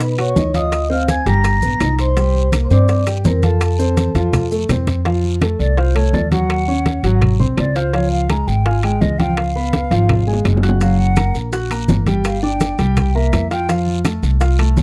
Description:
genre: Afro-Cuban jazz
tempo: 166 BPM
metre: 4/4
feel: straight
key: unclear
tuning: A4 = 439 Hz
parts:
  - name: vibraphone with medium mallets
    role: melody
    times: 0.0-4.7 s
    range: A4 to Bb5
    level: -24 LUFS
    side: equal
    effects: none
  - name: mellow hollow silver concert flute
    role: second line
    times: 0.0-13.7 s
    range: C5 to Bb6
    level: -27 LUFS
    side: equal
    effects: none
  - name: warm concert grand piano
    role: accompaniment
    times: 0.0-14.8 s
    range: F3 to Gb6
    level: -23 LUFS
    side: equal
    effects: none
  - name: upright bass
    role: bass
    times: 0.0-14.8 s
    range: Gb1 to B2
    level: -19 LUFS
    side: equal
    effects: none
  - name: bongos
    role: percussion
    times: 0.0-14.8 s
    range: none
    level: -28 LUFS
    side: equal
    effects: none
  - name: congas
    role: percussion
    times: 0.0-14.8 s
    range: none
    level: -23 LUFS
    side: equal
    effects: none
  - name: guiro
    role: percussion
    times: 0.0-14.8 s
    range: none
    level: -37 LUFS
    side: equal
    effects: none
  - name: maracas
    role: percussion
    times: 0.0-5.1, 10.8-14.8 s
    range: none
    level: -40 LUFS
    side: equal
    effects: none
  - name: timbales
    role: percussion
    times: 0.0-14.8 s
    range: none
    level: -30 LUFS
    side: equal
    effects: none
  - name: claves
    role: percussion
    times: 0.2-14.8 s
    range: none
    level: -34 LUFS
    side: equal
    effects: none
room: little or no reverb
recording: dry, close 1970s-style studio recording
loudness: -16 LUFS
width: mono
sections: 0.0-5.1 A section; 5.1-14.8 B section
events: drum fill 4.0-5.1, 10.1-10.8; flute solo 5.1-14.8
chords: 0.0 Badd9; 0.7 Bb13; 1.4 Gaug; 2.2 Csus2; 3.6 F; 6.5 Ebm7; 7.2 Ab7; 7.9 Db; 9.4 Db7; 10.8 Gb; 12.3 G5; 13.0 C7; 13.7 F

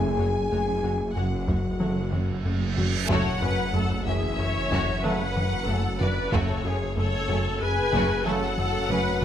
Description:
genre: cinematic, hybrid orchestral and electronic film score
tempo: 93 BPM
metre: 5/4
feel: straight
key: F# minor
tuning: A4 = 439 Hz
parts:
  - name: warm symphonic violin section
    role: second line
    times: 0.0-9.0 s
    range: A3 to G#5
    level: -34 LUFS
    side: left 3 dB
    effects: none
  - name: dark French horn section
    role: sustained chords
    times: 0.0-9.2 s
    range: C#3 to G#4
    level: -32 LUFS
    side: left 4 dB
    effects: none
  - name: mellow trombone section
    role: sustained chords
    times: 0.0-8.5 s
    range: C#3 to A3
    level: -36 LUFS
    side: right 4 dB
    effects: none
  - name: thumb-piano-like synth pluck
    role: arpeggios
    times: 0.0-9.2 s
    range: F#3 to F#4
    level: -36 LUFS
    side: right 2 dB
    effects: chorus
  - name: rubbery square bass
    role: riff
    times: 0.0-9.2 s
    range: F#2 to F#3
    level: -29 LUFS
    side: left 1 dB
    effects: none
  - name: clear symphonic double bass section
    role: bass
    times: 0.0-9.2 s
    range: F#1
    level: -34 LUFS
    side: right 4 dB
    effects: none
  - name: rich symphonic cello section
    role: bass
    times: 0.0-9.2 s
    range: F#2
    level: -34 LUFS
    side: right 2 dB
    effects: none
  - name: snarling distorted saw bass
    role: bass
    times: 0.0-9.2 s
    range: F#1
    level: -32 LUFS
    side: equal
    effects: distortion
  - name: reverse cymbal and sub drop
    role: sound effects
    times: 2.3-6.3 s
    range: none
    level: -36 LUFS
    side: right 3 dB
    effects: none
  - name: rich symphonic violin section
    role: melody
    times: 0.2-9.2 s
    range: C#5 to G#5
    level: -32 LUFS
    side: left 3 dB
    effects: none
  - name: rich symphonic viola section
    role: accompaniment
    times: 0.2-9.2 s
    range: A3 to C#5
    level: -31 LUFS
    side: equal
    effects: none
  - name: taiko ensemble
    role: drums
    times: 1.5-9.2 s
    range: none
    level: -33 LUFS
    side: equal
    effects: none
room: moderate concert hall reverb, RT60 2.2 s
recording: none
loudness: -23 LUFS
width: side -10 dB against mid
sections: 0.0-3.1 A section; 3.1-9.2 B section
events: reverse cymbal 2.3-3.1; impact 3.1-6.3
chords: 0.0 F#m

